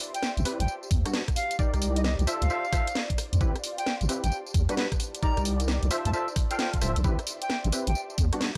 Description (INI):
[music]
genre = UK garage, two-step garage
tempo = 132 BPM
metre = 4/4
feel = swing 65% on 16ths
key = A minor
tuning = A4 = 440 Hz
[part]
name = garage drum kit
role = drums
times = 0.0-8.6 s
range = hi-hat, rim click, snare drum, tambourine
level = -35 LUFS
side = equal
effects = none
[part]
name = ethereal airy pad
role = texture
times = 0.0-8.6 s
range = F4 to C6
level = -43 LUFS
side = equal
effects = ensemble chorus, built-in reverb, sidechain pumping
[part]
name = bright reedy wooden flute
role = melody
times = 0.1-8.0 s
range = B4 to Bb5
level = -35 LUFS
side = equal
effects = none
[part]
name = deep soft wobble bass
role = bass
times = 0.4-8.3 s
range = D1 to F2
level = -28 LUFS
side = equal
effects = chorus
[part]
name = percussive organ stab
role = stabs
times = 0.5-8.5 s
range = G3 to F5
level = -35 LUFS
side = equal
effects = ensemble chorus, analog delay
[part]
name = electronic kick drum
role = drums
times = 0.9-8.6 s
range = none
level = -30 LUFS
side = equal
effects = none
[sound]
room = digital ambience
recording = dry, gritty hardware recording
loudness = -27 LUFS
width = mono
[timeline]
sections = 0.0-8.6 A section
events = none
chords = 0.0 Am9; 0.7 Em9; 1.4 Cm9; 2.3 Dm9; 3.4 Am9; 4.3 Em9; 5.0 Cm9; 5.9 Dm9; 7.0 Am9; 8.0 Em9